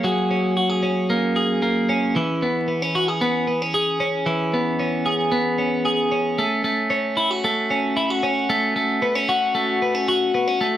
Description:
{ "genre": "indie pop", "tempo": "113 BPM", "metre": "4/4", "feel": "straight", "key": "unclear", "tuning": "A4 = 439 Hz", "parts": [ { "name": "twelve-string electric guitar", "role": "solo", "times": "0.0-10.8 s", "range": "E3 to G#4", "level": "-19 LUFS", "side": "equal", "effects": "slapback echo" } ], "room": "moderate club reverb, RT60 0.6 s", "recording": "vinyl crackle", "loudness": "-19 LUFS", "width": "side -12 dB against mid", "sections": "0.0-2.1 A section; 2.1-10.8 B section", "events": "none", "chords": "0.0 F#add9; 2.1 C#m7; 6.4 F#m" }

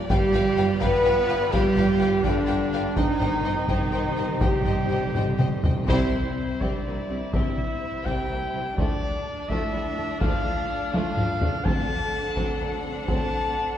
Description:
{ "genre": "cinematic, epic orchestral film score", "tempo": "84 BPM (dotted quarters)", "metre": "6/8", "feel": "straight", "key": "C major from 5.9 s", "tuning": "A4 = 435 Hz", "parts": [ { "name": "warm studio string section", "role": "sustained chords", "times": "0.0-13.8 s", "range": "A3 to F#5", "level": "-35 LUFS", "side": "left 2 dB", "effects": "none" }, { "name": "warm symphonic violin section", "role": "melody", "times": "0.1-13.8 s", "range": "D4 to G5", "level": "-35 LUFS", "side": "left 3 dB", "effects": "none" }, { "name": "warm symphonic violin section", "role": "second line", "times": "0.1-13.3 s", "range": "G3 to F5", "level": "-35 LUFS", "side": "left 2 dB", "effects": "none" }, { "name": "warm symphonic viola section", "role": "accompaniment", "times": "0.1-13.3 s", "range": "F3 to B4", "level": "-34 LUFS", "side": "right 2 dB", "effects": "none" }, { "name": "mellow French horn section", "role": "sustained chords", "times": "0.1-13.8 s", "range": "C4 to B4", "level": "-29 LUFS", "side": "left 2 dB", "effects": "none" }, { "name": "clear trumpet", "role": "stabs", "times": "0.1-13.8 s", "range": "D4 to A5", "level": "-31 LUFS", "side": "equal", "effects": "none" }, { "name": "rich symphonic cello section", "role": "bass", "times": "0.1-13.2 s", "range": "C2 to B3", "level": "-30 LUFS", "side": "right 4 dB", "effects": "none" }, { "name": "rich symphonic double bass section", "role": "bass", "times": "0.1-13.2 s", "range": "G1 to D2", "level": "-32 LUFS", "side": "right 1 dB", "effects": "none" }, { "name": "solo taiko drums", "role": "drums", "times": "0.1-13.5 s", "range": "none", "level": "-27 LUFS", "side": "equal", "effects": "none" }, { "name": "timpani", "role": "percussion", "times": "3.0-6.6 s", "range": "C3", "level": "-31 LUFS", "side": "equal", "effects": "none" } ], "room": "wet scoring stage reverb, RT60 2.0 s", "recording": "recorded in a church or concert hall", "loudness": "-22 LUFS", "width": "side -10 dB against mid", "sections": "0.0-5.9 A section; 5.9-13.8 B section", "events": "timpani fill 3.0-5.9; drum fill 5.1-5.9, 10.9-11.6; band accent 5.9-6.4", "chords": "0.1 G7; 3.0 Cm/G; 5.9 C; 8.8 Dm; 11.6 D7" }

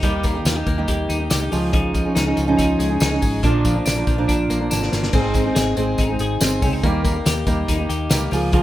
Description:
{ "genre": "jangly indie pop", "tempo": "141 BPM", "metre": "4/4", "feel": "straight", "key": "Eb mixolydian", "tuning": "A4 = 441 Hz", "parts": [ { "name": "fingerpicked steel-string acoustic guitar", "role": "accompaniment", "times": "0.0-8.6 s", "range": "Ab2 to Bb4", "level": "-22 LUFS", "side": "right 3 dB", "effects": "none" }, { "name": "twelve-string electric guitar", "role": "arpeggios", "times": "0.0-8.6 s", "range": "Eb3 to Ab4", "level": "-23 LUFS", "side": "left 3 dB", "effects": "none" }, { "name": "vintage muted fingered electric bass", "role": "bass", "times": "0.0-8.6 s", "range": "G1 to Eb2", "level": "-24 LUFS", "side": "equal", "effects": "none" }, { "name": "loose indie drum kit", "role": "drums", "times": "0.0-8.6 s", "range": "crash cymbal, hi-hat, kick drum, snare drum", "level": "-22 LUFS", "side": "equal", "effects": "none" }, { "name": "tambourine", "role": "percussion", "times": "0.0-8.4 s", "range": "none", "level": "-31 LUFS", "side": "right 1 dB", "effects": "none" } ], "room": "light reverb, studio reverb", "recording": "rough home demo mix", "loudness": "-17 LUFS", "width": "side -14 dB against mid", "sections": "0.0-5.1 A section; 5.1-8.6 B section", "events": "drum fill 4.7-5.1", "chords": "0.0 Eb; 1.5 Dbadd9; 3.4 Bb; 5.1 Ab; 6.8 Eb" }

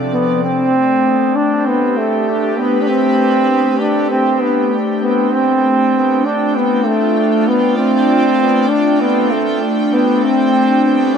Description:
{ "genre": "ambient", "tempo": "98 BPM", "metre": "4/4", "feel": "swing 54% on 16ths", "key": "unclear", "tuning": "A4 = 440 Hz", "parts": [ { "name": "airy breathy pad", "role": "sustained chords", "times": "0.0-11.2 s", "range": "C3 to G5", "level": "-16 LUFS", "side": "left 1 dB", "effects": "chorus" }, { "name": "warm trombone", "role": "melody", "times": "0.1-11.2 s", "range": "A3 to D4", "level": "-14 LUFS", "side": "right 1 dB", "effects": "dub echo" } ], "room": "wet spring reverb, RT60 1.2 s, small room ambience", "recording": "echo-heavy mix", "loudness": "-12 LUFS", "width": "side -7 dB against mid", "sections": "0.0-11.2 A section", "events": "none", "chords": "0.4 Gadd9; 5.3 Dm7" }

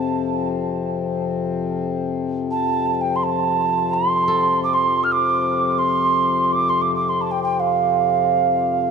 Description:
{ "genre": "world meditative, free-time meditation music", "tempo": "free time", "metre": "none", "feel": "none", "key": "F major pentatonic", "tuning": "A4 = 441 Hz", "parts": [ { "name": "mellow hollow alto ocarina", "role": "melody", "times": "0.0-8.9 s", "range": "F5 to F6", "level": "-18 LUFS", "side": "right 4 dB", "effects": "none" }, { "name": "hand-pumped harmonium", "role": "drone", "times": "0.0-8.9 s", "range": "F2 to C3", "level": "-23 LUFS", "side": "left 6 dB", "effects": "none" }, { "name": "kora", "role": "texture", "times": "4.3-8.9 s", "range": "A4", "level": "-34 LUFS", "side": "left 5 dB", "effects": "none" } ], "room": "wet cathedral reverb, RT60 4.7 s", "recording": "dark, warm production", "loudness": "-18 LUFS", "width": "side -6 dB against mid", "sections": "0.0-8.9 A section", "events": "none", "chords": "none" }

